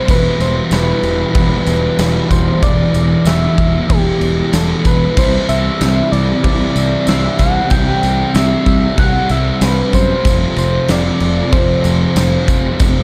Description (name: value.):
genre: rock, shoegaze and dream pop.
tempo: 94 BPM.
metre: 4/4.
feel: straight.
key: E minor.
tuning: A4 = 439 Hz.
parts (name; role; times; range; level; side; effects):
soft struck synth lead; melody; 0.0-13.0 s; G4 to G5; -22 LUFS; equal; chorus, analog delay.
fuzz guitar; riff; 0.0-13.0 s; E2 to C4; -21 LUFS; equal; distortion, lush chorus.
overdriven semi-hollow guitar; riff; 0.0-13.0 s; E2 to F4; -22 LUFS; equal; reverse reverb.
overdriven fingered electric bass; bass; 0.1-13.0 s; E1 to F#2; -20 LUFS; equal; none.
big rock drum kit; drums; 0.1-12.9 s; crash cymbal, kick drum, snare drum; -19 LUFS; equal; none.
tambourine; percussion; 0.1-12.9 s; none; -34 LUFS; equal; none.
room: moderate church reverb, RT60 3.4 s.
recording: dreamy mix soaked in reverb.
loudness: -14 LUFS.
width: mono.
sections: 0.0-13.0 A section.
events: none.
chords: 0.1 Em; 5.2 C; 10.3 F.